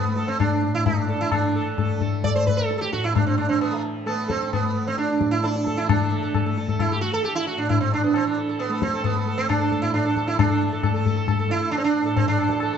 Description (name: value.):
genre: indian classical, Hindustani.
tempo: 133 BPM.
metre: 5/4.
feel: straight.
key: A raga bhimpalasi.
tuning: A4 = 439 Hz.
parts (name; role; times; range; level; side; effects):
sitar; melody; 0.0-12.8 s; A3 to D5; -23 LUFS; right 4 dB; none.
tanpura; drone; 0.0-12.8 s; A2 to A3; -30 LUFS; equal; none.
tabla; percussion; 0.2-12.8 s; none; -24 LUFS; left 6 dB; none.
room: moderate recital hall reverb, RT60 1.5 s.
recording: dark, warm production, nothing above 7.9 kHz.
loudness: -20 LUFS.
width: side -7 dB against mid.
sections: 0.0-5.9 A section; 5.9-12.8 B section.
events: speeding up 0.0-12.8.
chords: none.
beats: 0.39 0.86 | 1.32 1.78 2.24 2.70 3.16 | 3.61 4.07 4.53 4.98 5.44 | 5.89 6.34 6.80 7.25 7.70 | 8.15 8.60 9.05 9.49 9.94 | 10.39 10.83 11.28 11.72 12.16 | 12.61.